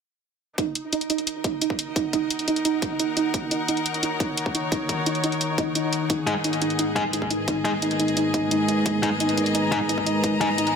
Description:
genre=dark technical drum and bass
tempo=174 BPM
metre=4/4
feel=straight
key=Eb minor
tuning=A4 = 442 Hz
part: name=dark analog pad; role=sustained chords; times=0.6-10.8 s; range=Ab3 to Gb5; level=-28 LUFS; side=left 1 dB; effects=chorus, sidechain pumping
part: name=soft round pluck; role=arpeggios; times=0.6-10.6 s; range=Eb4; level=-26 LUFS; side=right 3 dB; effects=lush chorus, sidechain pumping, dub echo
part: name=electronic hi-hat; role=drums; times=0.6-10.7 s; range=none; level=-28 LUFS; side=equal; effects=none
part: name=electronic kick drum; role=drums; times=0.6-10.5 s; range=none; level=-30 LUFS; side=left 1 dB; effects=high-pass filter on kick, high-pass filter on room
part: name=clear studio string section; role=texture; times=0.6-10.8 s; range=Eb4 to Bb5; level=-29 LUFS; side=left 2 dB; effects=sidechain pumping
part: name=sludgy distorted guitar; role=stabs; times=6.3-10.5 s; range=Ab3 to Ab4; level=-27 LUFS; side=left 2 dB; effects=overdrive, dub echo
room=moderate digital room reverb, RT60 0.9 s, digital ambience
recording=dense, heavily limited modern master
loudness=-22 LUFS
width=side -6 dB against mid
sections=0.6-10.8 A section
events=fade-in on string section 0.6-10.8; filter sweep on analog synth pad 0.6-10.8; filter sweep on synth pluck 0.6-10.8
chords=0.6 Ebm7; 6.1 Abmadd9

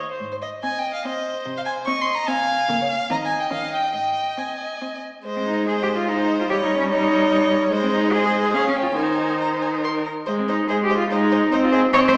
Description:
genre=quick classical-period movement for string quartet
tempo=136-149 BPM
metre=3/4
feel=rubato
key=Ab major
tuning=A4 = 440 Hz
part: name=warm viola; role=accompaniment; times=0.0-12.2 s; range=Eb3 to Db5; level=-26 LUFS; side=equal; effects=none
part: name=rich cello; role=bass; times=0.2-12.1 s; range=Ab2 to Db5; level=-24 LUFS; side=equal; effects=none
part: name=warm violin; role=melody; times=0.3-12.2 s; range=C5 to Db6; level=-29 LUFS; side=equal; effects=none
part: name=warm violin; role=second line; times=0.6-12.2 s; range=Bb4 to F5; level=-28 LUFS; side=equal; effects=none
room=wet recital hall reverb, RT60 1.5 s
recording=heard from further back in the room, small speaker sound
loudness=-21 LUFS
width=mono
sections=0.0-5.2 A section; 5.2-12.2 B section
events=none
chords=0.2 Ab; 1.5 Ab/C; 2.7 Bbm/Db; 3.1 Eb5; 3.5 Eb7; 3.9 Ab; 6.5 Eb7/G; 7.7 Ab; 8.5 Db; 9.0 Ab/Eb; 10.3 Ab; 11.5 Ab/C

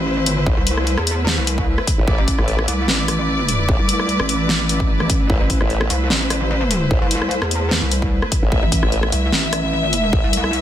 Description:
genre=heavy wobble dubstep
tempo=149 BPM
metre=4/4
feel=swing 53% on 16ths, half-time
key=A minor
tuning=A4 = 440 Hz
part: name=dark chamber string section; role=sustained chords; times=0.0-10.6 s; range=A3 to E5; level=-23 LUFS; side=equal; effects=sidechain pumping
part: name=pulsing pluck wobble bass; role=bass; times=0.0-10.6 s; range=A1 to E2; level=-20 LUFS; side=equal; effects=chorus, overdrive
part: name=big-room dance drum kit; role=drums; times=0.3-10.6 s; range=hi-hat, rim click, snare drum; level=-22 LUFS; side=left 1 dB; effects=small room ambience, soft clipping on snare
part: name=formant-sweep wobble bass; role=bass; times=0.5-10.2 s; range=A1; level=-20 LUFS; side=equal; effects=chorus, overdrive
part: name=electronic kick drum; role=drums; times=0.5-10.2 s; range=none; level=-19 LUFS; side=equal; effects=small room ambience
room=digital ambience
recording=dense, heavily limited modern master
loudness=-16 LUFS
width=side -11 dB against mid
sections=0.0-10.6 A section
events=none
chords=0.0 Amadd9

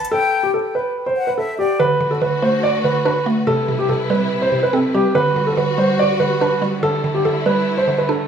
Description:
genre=hip hop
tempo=143 BPM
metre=4/4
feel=half-time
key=B phrygian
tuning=A4 = 440 Hz
part: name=breathy concert flute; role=second line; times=0.0-1.8 s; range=D5 to A5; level=-22 LUFS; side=left 5 dB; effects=digital delay
part: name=dark baby grand piano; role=melody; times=0.1-8.3 s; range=G4 to D5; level=-18 LUFS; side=right 1 dB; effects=digital delay
part: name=mallet-like synth pluck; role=accompaniment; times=1.8-8.3 s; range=C3 to D4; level=-21 LUFS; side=right 2 dB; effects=chorus
part: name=dark symphonic string section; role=sustained chords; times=1.8-8.3 s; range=C3 to B4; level=-24 LUFS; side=left 2 dB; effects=none
room=light reverb, studio reverb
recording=rough home demo mix, small room ambience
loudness=-15 LUFS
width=side -7 dB against mid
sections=0.0-1.8 A section; 1.8-8.3 B section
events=none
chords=0.1 N.C.; 1.8 Bm7; 3.5 Cmaj7; 5.2 Gmaj7; 6.8 A7sus4

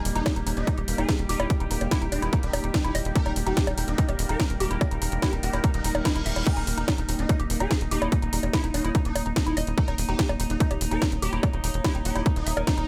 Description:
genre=psychedelic trance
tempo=145 BPM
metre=4/4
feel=straight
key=Eb major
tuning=A4 = 440 Hz
part: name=overtone-sweeping drone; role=sustained chords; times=0.0-12.9 s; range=G3 to Bb4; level=-39 LUFS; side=equal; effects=chorus, built-in reverb, sidechain pumping
part: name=woody wave-folded pluck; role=riff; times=0.0-12.8 s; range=Eb4 to Fb5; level=-36 LUFS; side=equal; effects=chorus, cassette tape, sidechain pumping, dub echo
part: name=warbly tape-like pad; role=texture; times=0.0-12.9 s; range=Bb3 to Bb5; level=-37 LUFS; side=equal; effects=chorus, built-in reverb, sidechain pumping
part: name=tight sequencer bass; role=bass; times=0.1-12.8 s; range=Eb1 to Fb1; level=-31 LUFS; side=equal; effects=none
part: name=techno drum kit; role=drums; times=0.1-12.9 s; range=bongos, crash cymbal, hi-hat, snare drum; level=-33 LUFS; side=equal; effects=overdrive, studio ambience
part: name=swarming rave lead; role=melody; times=0.2-12.9 s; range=Eb4 to Bb4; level=-37 LUFS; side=equal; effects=chorus, phaser, sidechain pumping, digital delay
part: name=electronic kick drum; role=drums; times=0.3-12.8 s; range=none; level=-27 LUFS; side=equal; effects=overdrive, studio ambience
part: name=formant-sweep wobble bass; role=second line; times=0.5-2.5, 7.1-9.1 s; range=G3 to Db4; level=-46 LUFS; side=equal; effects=none
part: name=reverse cymbal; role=sound effects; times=5.9-6.5 s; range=none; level=-39 LUFS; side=equal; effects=none
room=little or no reverb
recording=none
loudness=-25 LUFS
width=mono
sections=0.0-12.9 A section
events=reverse cymbal 5.9-6.5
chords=0.0 Eb5

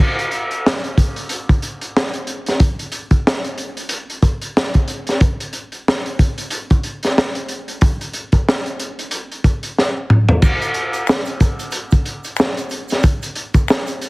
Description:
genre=R&B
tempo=92 BPM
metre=4/4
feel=swing 59% on 16ths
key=none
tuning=none
part: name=crunchy breakbeat drum kit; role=drums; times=0.0-14.1 s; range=crash cymbal, hi-hat, kick drum, snare drum, toms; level=-16 LUFS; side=equal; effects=none
part: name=egg shaker and finger snaps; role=percussion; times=10.4-14.1 s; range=none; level=-28 LUFS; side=left 4 dB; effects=none
room=little or no reverb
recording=heavily compressed radio sound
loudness=-16 LUFS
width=side -25 dB against mid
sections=0.0-10.4 A section; 10.4-14.1 A section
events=drum fill 9.8-10.4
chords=none

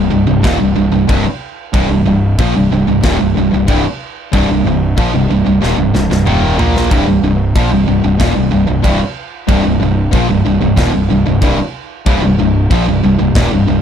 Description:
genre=heavy metal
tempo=93 BPM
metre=4/4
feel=straight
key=C minor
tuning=A4 = 441 Hz
part: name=distorted electric guitar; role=riff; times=0.0-13.8 s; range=C2 to Bb3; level=-17 LUFS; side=left 10 dB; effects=overdrive
part: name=high-gain distorted guitar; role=riff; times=0.0-13.8 s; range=C2 to Bb3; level=-16 LUFS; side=right 8 dB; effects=distortion
part: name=sludgy distorted guitar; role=riff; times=0.0-13.8 s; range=C2 to Bb3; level=-18 LUFS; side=left 1 dB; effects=overdrive
part: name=fuzz fingered electric bass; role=bass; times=0.0-13.8 s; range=C1 to Bb1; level=-17 LUFS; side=equal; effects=overdrive
part: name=modern studio drum kit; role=drums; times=0.4-13.5 s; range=crash cymbal, kick drum, snare drum, toms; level=-18 LUFS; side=equal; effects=none
room=little or no reverb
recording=dark, warm production, faint mains hum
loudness=-10 LUFS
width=side -8 dB against mid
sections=0.0-13.8 A section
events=drum fill 5.6-6.9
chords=0.0 Cm

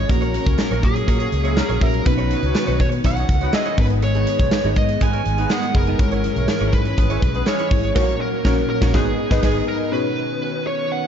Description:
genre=1980s-style pop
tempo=122 BPM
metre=4/4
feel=straight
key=unclear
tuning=A4 = 440 Hz
part: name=biting lead guitar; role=melody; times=0.0-11.1 s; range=G#4 to G#5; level=-25 LUFS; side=right 1 dB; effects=overdrive
part: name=FM electric piano with soft pad layer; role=accompaniment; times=0.0-11.1 s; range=G#2 to E5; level=-25 LUFS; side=left 2 dB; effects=chorus, phaser
part: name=string machine, violas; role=sustained chords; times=0.0-11.1 s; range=D#3 to D#4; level=-29 LUFS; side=equal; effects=ensemble chorus
part: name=vintage muted fingered electric bass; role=bass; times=0.0-9.6 s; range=F#1 to B2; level=-22 LUFS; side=equal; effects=none
part: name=direct-recorded clean electric guitar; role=riff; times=0.1-9.6 s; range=B3 to C#5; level=-31 LUFS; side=right 8 dB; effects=ensemble chorus
part: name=big rock drum kit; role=drums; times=0.1-9.6 s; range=crash cymbal, hi-hat, kick drum, snare drum, tambourine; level=-20 LUFS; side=equal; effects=none
part: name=mellow horn section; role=stabs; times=0.5-9.6 s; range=D#3 to C#5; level=-32 LUFS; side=left 1 dB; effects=ping-pong delay
part: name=group handclap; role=percussion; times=0.6-7.6 s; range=none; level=barely audible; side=none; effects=none
room=light reverb, small room ambience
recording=dark, warm production, nothing above 7.6 kHz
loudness=-17 LUFS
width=side -8 dB against mid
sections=0.0-9.9 A section; 9.9-11.1 A section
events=band accent 8.0-9.9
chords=0.1 F#/A#; 2.1 Badd9; 3.8 G#m; 6.0 C#m/G#; 8.0 F#/A#; 8.9 G#m; 9.9 Badd9

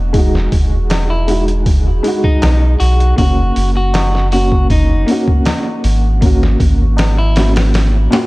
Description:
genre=trip hop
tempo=79 BPM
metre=4/4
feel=straight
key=unclear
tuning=A4 = 440 Hz
part: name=dark upright piano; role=accompaniment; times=0.0-8.3 s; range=Bb2 to Gb4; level=-18 LUFS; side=equal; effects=tremolo, vintage 12-bit sampler grit, low-pass filter, tape echo
part: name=soft dub sub bass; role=bass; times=0.0-8.1 s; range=Fb1 to B1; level=-13 LUFS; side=equal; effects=none
part: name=trip hop sampler-style drum kit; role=drums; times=0.1-8.3 s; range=hi-hat, kick drum, snare drum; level=-15 LUFS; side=equal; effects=studio reverb
part: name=tabla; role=percussion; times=0.9-7.1 s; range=none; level=-29 LUFS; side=left 2 dB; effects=analog delay
part: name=electric guitar at the edge of break-up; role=melody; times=1.1-7.5 s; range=D#4 to Gb4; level=-22 LUFS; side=left 1 dB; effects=dub echo
room=little or no reverb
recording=echo-heavy mix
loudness=-11 LUFS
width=side -21 dB against mid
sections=0.0-8.3 A section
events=kick drops out 7.7-8.3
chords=0.1 Emaj7; 3.2 Gbadd9; 6.2 Ab7sus4

